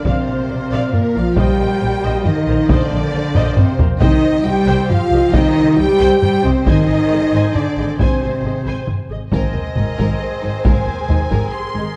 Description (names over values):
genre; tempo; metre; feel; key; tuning
cinematic, epic orchestral film score; 136 BPM; 3/4; straight; unclear; A4 = 440 Hz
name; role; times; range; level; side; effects
warm symphonic violin section; melody; 0.0-12.0 s; Bb4 to C6; -33 LUFS; equal; none
warm symphonic violin section; second line; 0.0-11.9 s; Eb4 to G5; -28 LUFS; equal; none
dark French horn section; sustained chords; 0.0-10.8 s; Bb3 to G4; -20 LUFS; equal; none
warm woodwind section; sustained chords; 0.0-12.0 s; Bb3 to Ab5; -32 LUFS; equal; none
warm symphonic cello section; bass; 0.0-11.8 s; Ab2 to G3; -24 LUFS; equal; none
warm symphonic viola section; accompaniment; 0.1-12.0 s; G4 to Ab5; -30 LUFS; equal; none
warm studio double bass section; bass; 0.1-11.8 s; Ab1 to C2; -24 LUFS; equal; none
taiko ensemble; drums; 0.1-11.7 s; none; -20 LUFS; equal; none
room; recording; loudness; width
wet recital hall reverb, RT60 1.5 s; dark, warm production; -16 LUFS; mono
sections
0.0-9.3 A section; 9.3-12.0 B section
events
drum fill 3.4-4.0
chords
0.0 Bb; 1.4 Eb6/Bb; 4.0 Cm; 6.7 Ab; 9.3 Abadd9